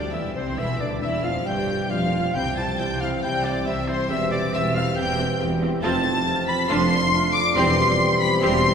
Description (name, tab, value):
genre	classical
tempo	138 BPM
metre	4/4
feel	rubato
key	C major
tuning	A4 = 441 Hz
part	rich studio violin section	melody	0.0-8.7 s	C6 to D7	-29 LUFS	left 4 dB	none
part	rich symphonic violin section	second line	0.0-8.7 s	C5 to D6	-30 LUFS	left 2 dB	none
part	rich symphonic viola section	accompaniment	0.0-8.6 s	C4 to G4	-31 LUFS	right 1 dB	none
part	dark French horn section	sustained chords	0.0-8.7 s	C3 to G4	-30 LUFS	left 2 dB	none
part	concert harp	arpeggios	0.0-8.7 s	E2 to G4	-29 LUFS	left 4 dB	none
part	clear symphonic cello section	bass	0.0-8.7 s	C2 to C3	-28 LUFS	right 2 dB	none
part	clear symphonic double bass section	bass	0.0-8.7 s	E1 to D2	-30 LUFS	right 2 dB	none
part	clear oboe	second line	0.1-8.7 s	C5 to D6	-28 LUFS	right 2 dB	none
part	silver concert flute	second line	0.1-8.7 s	C5 to D6	-29 LUFS	left 2 dB	none
part	dark trombone section	sustained chords	0.1-8.7 s	C3 to C4	-31 LUFS	right 3 dB	none
room	wet church reverb, RT60 3.2 s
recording	recorded in a church or concert hall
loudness	-20 LUFS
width	side -7 dB against mid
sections	0.0-8.7 A section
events	none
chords	0.0 C; 0.6 G7; 2.4 C; 4.1 C/E; 5.8 F; 6.7 Dm/F; 7.6 C/E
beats	0.13 | 0.58 1.02 1.46 1.91 | 2.35 2.80 3.23 3.67 | 4.10 4.54 4.97 5.40 | 5.83 6.27 6.70 7.13 | 7.56 7.99 8.43